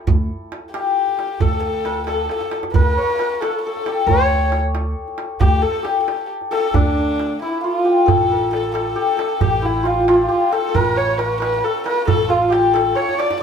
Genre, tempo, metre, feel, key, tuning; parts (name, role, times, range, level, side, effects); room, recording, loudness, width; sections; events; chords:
Persian modal ensemble; 90 BPM (dotted quarters); 6/8; straight; A dastgah homayun from 8.1 s; A4 = 442 Hz
santur; melody; 0.0-13.4 s; D4 to D5; -19 LUFS; left 2 dB
upright bass; bass; 0.1-12.9 s; A1 to D2; -21 LUFS; equal
tombak; percussion; 0.1-13.4 s; -23 LUFS; right 6 dB
dark kamancheh; second line; 0.7-13.4 s; D4 to D5; -21 LUFS; left 1 dB
wet small room reverb, RT60 0.6 s; band playing live in one room; -16 LUFS; side -7 dB against mid
0.0-8.1 A section; 8.1-13.4 B section
drum fill 2.3-2.7, 13.0-13.4